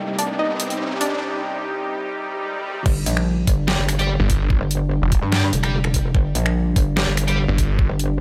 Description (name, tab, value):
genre	heavy wobble dubstep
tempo	146 BPM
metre	4/4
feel	half-time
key	G minor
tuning	A4 = 440 Hz
part	unison pluck	melody	0.0-1.2 s	D4 to Eb5	-28 LUFS	equal	subtle chorus, digital delay
part	supersaw pad	sustained chords	0.0-8.2 s	C2 to G4	-30 LUFS	equal	sidechain pumping, low-pass filter
part	riser and swell	sound effects	0.0-2.9 s	none	-33 LUFS	equal	none
part	dubstep drum kit	drums	0.2-8.1 s	crash cymbal, finger snaps, hi-hat, snare drum	-27 LUFS	equal	overdrive
part	metallic wobble bass	bass	2.9-8.2 s	F1 to G2	-23 LUFS	equal	distortion, chorus, overdrive
part	electronic kick drum	drums	2.9-7.9 s	none	-22 LUFS	equal	none
part	thick fuzz guitar	stabs	3.7-7.4 s	G4 to G5	-30 LUFS	equal	distortion, digital delay
part	snarling distorted saw bass	bass	4.2-7.9 s	F1 to G1	-22 LUFS	equal	distortion, overdrive
room	light reverb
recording	high-pass filter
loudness	-21 LUFS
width	mono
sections	0.0-2.9 A section; 2.9-8.2 B section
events	build-up 0.0-2.9; riser 0.0-1.2; filter sweep on supersaw synth 0.0-2.9; break 1.2-2.9; swell 2.2-2.9; drop 2.9-8.2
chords	0.0 Cm; 2.9 G5